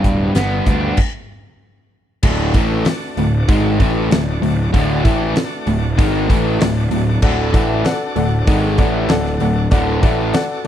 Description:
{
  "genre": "classic rock",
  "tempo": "96 BPM",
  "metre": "4/4",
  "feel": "straight",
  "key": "D major",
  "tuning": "A4 = 440 Hz",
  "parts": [
    { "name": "distorted electric guitar", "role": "riff", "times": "0.0-10.7 s", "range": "D2 to D4", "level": "-18 LUFS", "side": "equal", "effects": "distortion" },
    { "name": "fuzz picked electric bass", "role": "bass", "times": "0.0-10.4 s", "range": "D1 to D2", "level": "-20 LUFS", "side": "equal", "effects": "overdrive" },
    { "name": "big rock drum kit", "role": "drums", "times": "0.0-10.7 s", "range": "crash cymbal, hi-hat, kick drum, snare drum", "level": "-18 LUFS", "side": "equal", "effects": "none" },
    { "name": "bright tonewheel organ", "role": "sustained chords", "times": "2.2-10.7 s", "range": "A3 to D5", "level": "-28 LUFS", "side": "equal", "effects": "slow rotary speaker, overdrive" },
    { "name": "clear upright piano", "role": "accompaniment", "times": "7.2-10.7 s", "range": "A4 to F#5", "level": "-22 LUFS", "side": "left 4 dB", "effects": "none" }
  ],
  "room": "little or no reverb",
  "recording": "dry, close 1970s-style studio recording",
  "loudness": "-14 LUFS",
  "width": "side -10 dB against mid",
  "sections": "0.0-2.2 A section; 2.2-10.7 B section",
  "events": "stop 1.0-2.2",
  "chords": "0.0 G; 2.2 D"
}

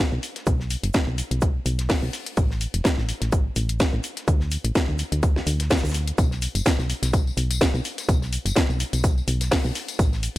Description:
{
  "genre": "piano house",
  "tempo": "126 BPM",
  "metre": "4/4",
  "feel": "swing 55% on 16ths",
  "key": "B minor",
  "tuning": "A4 = 445 Hz",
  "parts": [
    { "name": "solid FM bass", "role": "bass", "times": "0.0-10.4 s", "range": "E1 to D2", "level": "-25 LUFS", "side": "equal", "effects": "sidechain pumping" },
    { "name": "damped 70s drum kit", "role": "drums", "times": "0.2-10.4 s", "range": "hi-hat, shaker, snare drum", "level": "-37 LUFS", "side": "equal", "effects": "high-pass filter on hats, high-pass filter on snare, high-pass filter on perc, high-pass filter on room" },
    { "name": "house drum kit", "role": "drums", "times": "0.2-10.4 s", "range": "hi-hat, snare drum, tambourine", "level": "-26 LUFS", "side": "left 1 dB", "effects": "none" },
    { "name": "electronic kick drum", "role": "drums", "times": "0.5-10.1 s", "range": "none", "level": "-22 LUFS", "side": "equal", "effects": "none" }
  ],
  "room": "little or no reverb",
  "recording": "none",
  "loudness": "-21 LUFS",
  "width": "side -17 dB against mid",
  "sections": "0.0-10.4 A section",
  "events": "none",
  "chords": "none"
}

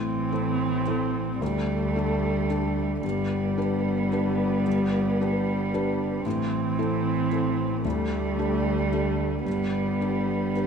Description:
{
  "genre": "neoclassical piano and strings",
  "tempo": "111 BPM",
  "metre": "3/4",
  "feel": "rubato",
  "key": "G major",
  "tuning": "A4 = 439 Hz",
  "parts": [
    { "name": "dark cello", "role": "second line", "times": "0.0-10.7 s", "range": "E3 to G3", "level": "-27 LUFS", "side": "right 2 dB", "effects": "none" },
    { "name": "dark viola", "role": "accompaniment", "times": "0.0-10.7 s", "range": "A3 to C4", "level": "-31 LUFS", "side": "right 1 dB", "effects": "none" },
    { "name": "felt-muted upright piano", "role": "accompaniment", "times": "0.0-10.7 s", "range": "D2 to B4", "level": "-29 LUFS", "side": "left 3 dB", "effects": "none" },
    { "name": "warm double bass", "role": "bass", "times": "0.0-10.7 s", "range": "G1 to D2", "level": "-32 LUFS", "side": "equal", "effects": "none" }
  ],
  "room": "moderate concert hall reverb, RT60 1.9 s",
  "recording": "recorded in a church or concert hall",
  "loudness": "-23 LUFS",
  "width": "side -6 dB against mid",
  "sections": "0.0-10.7 A section",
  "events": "none",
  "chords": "0.0 Am; 1.4 Dsus4; 3.0 G; 6.2 Am; 7.8 Dsus4; 9.5 G"
}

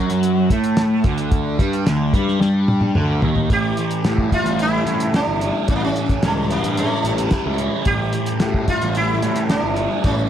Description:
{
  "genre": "psychedelic rock",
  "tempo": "110 BPM",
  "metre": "4/4",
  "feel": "straight",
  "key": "unclear",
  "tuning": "A4 = 441 Hz",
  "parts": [
    { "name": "fuzz guitar", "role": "riff", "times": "0.0-10.3 s", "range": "A2 to E4", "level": "-20 LUFS", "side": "equal", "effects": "distortion, phaser" },
    { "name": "fuzz picked electric bass", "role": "bass", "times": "0.0-10.3 s", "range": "G1 to A2", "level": "-22 LUFS", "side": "equal", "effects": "overdrive" },
    { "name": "cloth-damped thuddy drum kit", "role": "drums", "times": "0.1-10.2 s", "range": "hi-hat, kick drum, snare drum, toms", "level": "-21 LUFS", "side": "equal", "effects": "none" },
    { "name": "sitar", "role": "melody", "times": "3.5-10.3 s", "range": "A3 to G4", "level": "-23 LUFS", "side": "right 1 dB", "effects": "analog delay" }
  ],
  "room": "little or no reverb",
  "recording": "none",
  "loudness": "-16 LUFS",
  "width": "side -10 dB against mid",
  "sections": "0.0-3.5 A section; 3.5-10.3 B section",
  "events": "drum fill 2.4-3.5",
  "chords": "0.0 D5; 3.5 A7"
}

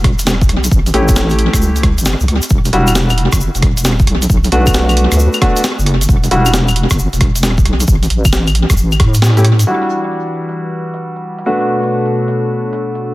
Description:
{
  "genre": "UK garage, two-step garage",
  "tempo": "134 BPM",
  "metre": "4/4",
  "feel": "swing 66% on 16ths",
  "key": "E dorian",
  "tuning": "A4 = 436 Hz",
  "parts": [
    { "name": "deep soft wobble bass", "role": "bass", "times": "0.0-9.6 s", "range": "E1 to A2", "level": "-13 LUFS", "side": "equal", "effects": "chorus" },
    { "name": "breakbeat sampler-style drum kit", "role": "drums", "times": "0.0-13.0 s", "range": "claves, hi-hat, rim click, snare drum", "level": "-18 LUFS", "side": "equal", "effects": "low-pass filter on hats, low-pass filter on snare, low-pass filter on perc, analog delay" },
    { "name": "electronic kick drum", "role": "drums", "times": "0.0-9.1 s", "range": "none", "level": "-13 LUFS", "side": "equal", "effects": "none" },
    { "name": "egg shaker", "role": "percussion", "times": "0.2-9.7 s", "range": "none", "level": "-25 LUFS", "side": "left 2 dB", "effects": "analog delay" },
    { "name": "warm grand piano", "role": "stabs", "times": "0.9-6.5, 9.4-13.1 s", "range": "G3 to G4", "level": "-16 LUFS", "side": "equal", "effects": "tape echo" },
    { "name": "warm analog pad", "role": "sustained chords", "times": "9.7-13.1 s", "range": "B2 to C#5", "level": "-20 LUFS", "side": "left 1 dB", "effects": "chorus, sidechain pumping" }
  ],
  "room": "light reverb, digital ambience",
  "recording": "echo-heavy mix",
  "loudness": "-11 LUFS",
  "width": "side -18 dB against mid",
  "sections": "0.0-9.7 A section; 9.7-13.1 B section",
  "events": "band accent 9.2; filter sweep on analog synth pad 9.7-13.1",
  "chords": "0.0 E5; 0.7 A7; 2.5 Em; 4.3 Bm7; 6.1 Em; 7.9 N.C.; 9.7 Em9; 11.5 Bm7"
}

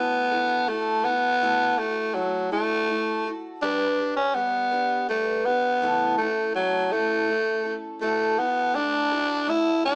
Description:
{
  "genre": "rock",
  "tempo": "55 BPM (dotted quarters)",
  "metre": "6/8",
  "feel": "straight",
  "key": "D major",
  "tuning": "A4 = 440 Hz",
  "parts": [
    { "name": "growling tenor saxophone", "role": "melody", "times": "0.0-10.0 s", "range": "F#3 to E4", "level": "-25 LUFS", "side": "equal", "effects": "none" },
    { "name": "picked twelve-string acoustic guitar", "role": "accompaniment", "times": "0.0-10.0 s", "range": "A2 to B4", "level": "-32 LUFS", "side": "equal", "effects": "none" }
  ],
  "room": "light reverb",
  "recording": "band playing live in one room, small speaker sound",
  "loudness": "-24 LUFS",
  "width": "mono",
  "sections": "0.0-10.0 A section",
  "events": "none",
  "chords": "0.0 Dadd9; 3.6 G; 5.8 A; 8.0 Dadd9"
}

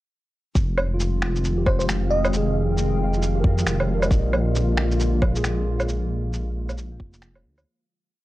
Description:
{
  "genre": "future garage",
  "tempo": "135 BPM",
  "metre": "4/4",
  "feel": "swing 60% on 16ths",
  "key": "F dorian",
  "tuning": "A4 = 440 Hz",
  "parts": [
    { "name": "flickering grainy texture", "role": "texture", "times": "1.3-7.7 s", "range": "F4 to F5", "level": "-36 LUFS", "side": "left 1 dB", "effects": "built-in reverb" },
    { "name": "warbly tape-like pad", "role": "sustained chords", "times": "0.7-7.6 s", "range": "D3 to G5", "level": "-29 LUFS", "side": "left 1 dB", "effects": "chorus, built-in reverb, sidechain pumping" },
    { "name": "dark detuned saw bass", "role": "bass", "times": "0.6-7.7 s", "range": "F1 to F2", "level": "-23 LUFS", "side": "equal", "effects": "sidechain pumping" },
    { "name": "electronic kick drum", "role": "drums", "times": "0.6-7.1 s", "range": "none", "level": "-20 LUFS", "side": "equal", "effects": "vintage 12-bit sampler grit, studio reverb" },
    { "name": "electronic shaker, woodblock and finger snaps", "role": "drums", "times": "0.6-7.6 s", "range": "none", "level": "-26 LUFS", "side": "right 1 dB", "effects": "vintage 12-bit sampler grit, studio reverb" },
    { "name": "tine electric piano", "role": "accompaniment", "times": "0.9-7.9 s", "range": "Bb3 to Eb5", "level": "-31 LUFS", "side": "right 1 dB", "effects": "medium tremolo, sidechain pumping, analog delay" },
    { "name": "bell-like FM electric piano", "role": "melody", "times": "1.7-2.6 s", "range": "C5 to Eb5", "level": "-28 LUFS", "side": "right 1 dB", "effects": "chorus, phaser, analog delay" }
  ],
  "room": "digital ambience",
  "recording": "dry, gritty hardware recording, cassette tape",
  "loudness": "-20 LUFS",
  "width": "side -17 dB against mid",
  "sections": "0.6-7.7 groove",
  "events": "fade-out 5.3-7.7",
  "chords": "0.6 Fm7; 4.1 Bb7"
}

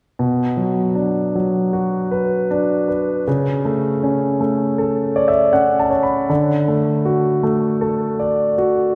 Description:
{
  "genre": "pop",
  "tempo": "79 BPM",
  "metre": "4/4",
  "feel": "straight",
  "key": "B minor",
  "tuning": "A4 = 441 Hz",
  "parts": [
    { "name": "warm concert grand piano", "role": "accompaniment", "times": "0.2-8.9 s", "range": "B2 to B5", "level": "-18 LUFS", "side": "equal", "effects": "none" }
  ],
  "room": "wet church reverb, RT60 3.0 s",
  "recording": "recorded in a church or concert hall",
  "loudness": "-18 LUFS",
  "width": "mono",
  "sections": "0.2-8.9 A section",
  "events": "grand piano fill 4.8-6.3",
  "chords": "0.2 Bm; 3.3 Bm11/C# (rootless); 6.3 D"
}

